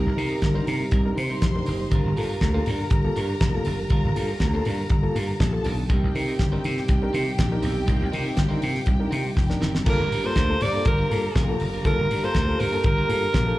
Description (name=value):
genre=disco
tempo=121 BPM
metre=4/4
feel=straight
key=G minor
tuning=A4 = 440 Hz
part: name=rich symphonic string section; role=second line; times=0.0-13.6 s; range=G4 to C6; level=-34 LUFS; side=left 1 dB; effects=slapback echo
part: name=electric guitar at the edge of break-up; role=accompaniment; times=0.0-13.5 s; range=C4 to C5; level=-36 LUFS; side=right 4 dB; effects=slapback echo
part: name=overdriven reed electric piano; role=accompaniment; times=0.0-13.6 s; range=G2 to Bb4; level=-31 LUFS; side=left 2 dB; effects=fast tremolo, slapback echo
part: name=dark French horn section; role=sustained chords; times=0.0-13.6 s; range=C3 to G4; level=-33 LUFS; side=right 1 dB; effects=none
part: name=vintage slap bass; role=bass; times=0.1-13.5 s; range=F1 to C3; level=-24 LUFS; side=equal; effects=none
part: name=damped 70s drum kit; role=drums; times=0.2-13.5 s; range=crash cymbal, hi-hat, kick drum, snare drum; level=-25 LUFS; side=equal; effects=none
part: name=breathy alto saxophone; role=melody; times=9.9-13.6 s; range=Bb4 to D5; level=-25 LUFS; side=right 1 dB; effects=slapback echo, tape echo
room=studio reverb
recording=live gig heard through the venue's PA, club reverb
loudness=-20 LUFS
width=side -17 dB against mid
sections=0.0-9.9 A section; 9.9-13.6 B section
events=drum fill 9.4-9.9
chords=0.0 Cm7; 1.9 Gm7; 5.9 Cm7; 9.9 Gm7